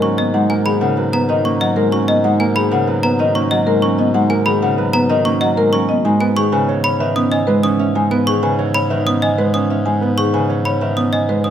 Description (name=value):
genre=classical, minimalist pattern music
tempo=189 BPM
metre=6/4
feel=straight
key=G# minor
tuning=A4 = 439 Hz
part: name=marimba with soft mallets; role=melody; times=0.0-11.5 s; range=G#4 to G#5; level=-20 LUFS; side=left 5 dB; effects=none
part: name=Celtic harp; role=accompaniment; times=0.0-11.5 s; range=C#3 to C#4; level=-18 LUFS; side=right 1 dB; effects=none
part: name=dark grand piano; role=arpeggios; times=0.0-11.5 s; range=C#4 to C#5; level=-24 LUFS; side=right 10 dB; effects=none
part: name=trough xylophone with plastic mallets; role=arpeggios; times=0.0-11.5 s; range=D#5 to D#6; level=-22 LUFS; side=right 2 dB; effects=none
part: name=clear bass clarinet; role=bass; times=0.0-11.5 s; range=G#2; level=-21 LUFS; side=left 1 dB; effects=none
room=light reverb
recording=close, detailed microphones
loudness=-14 LUFS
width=side -9 dB against mid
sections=0.0-11.5 A section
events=none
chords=0.0 G#m9; 6.0 C#m7/G#